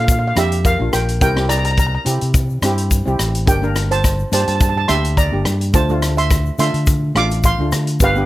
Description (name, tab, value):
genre	calypso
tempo	106 BPM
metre	4/4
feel	swing 54% on 16ths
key	unclear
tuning	A4 = 440 Hz
part	steel pan	melody	0.0-8.3 s	G4 to D6	-20 LUFS	right 2 dB	none
part	steel pan	accompaniment	0.0-8.3 s	A3 to Bb4	-24 LUFS	equal	none
part	fingered electric bass	bass	0.0-8.3 s	G1 to D3	-18 LUFS	equal	none
part	vintage drum kit	drums	0.1-8.1 s	hi-hat, kick drum, rim click	-19 LUFS	equal	none
part	egg shaker	percussion	0.1-8.2 s	none	-29 LUFS	left 11 dB	none
room	light reverb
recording	none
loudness	-14 LUFS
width	side -16 dB against mid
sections	0.0-8.3 A section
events	none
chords	0.0 Bb; 1.2 C7; 3.5 Gm; 5.7 Dm7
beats	0.09 0.65 | 1.22 1.78 2.35 2.92 | 3.48 4.05 4.61 5.18 | 5.74 6.31 6.88 7.44 | 8.01